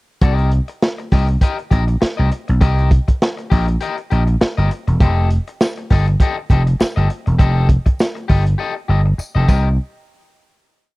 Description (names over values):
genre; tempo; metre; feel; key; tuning
funk; 100 BPM; 4/4; swing 56% on 16ths; C dorian; A4 = 440 Hz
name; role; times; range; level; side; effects
electric guitar at the edge of break-up; accompaniment; 0.2-9.7 s; G4 to Eb5; -24 LUFS; left 5 dB; none
vintage slap bass; bass; 0.2-9.8 s; E1 to C2; -15 LUFS; equal; none
crunchy breakbeat drum kit; drums; 0.2-9.6 s; crash cymbal, hi-hat, kick drum, snare drum; -15 LUFS; equal; none
tambourine; percussion; 5.6-9.8 s; none; -39 LUFS; left 2 dB; none
room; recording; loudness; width
small room reverb; dry, close 1970s-style studio recording; -14 LUFS; side -22 dB against mid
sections
0.2-9.8 groove; 9.8-11.0 final hit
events
drum fill 8.6-9.8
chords
0.2 Cm7; 5.0 F9; 9.5 Cm7; 9.8 N.C.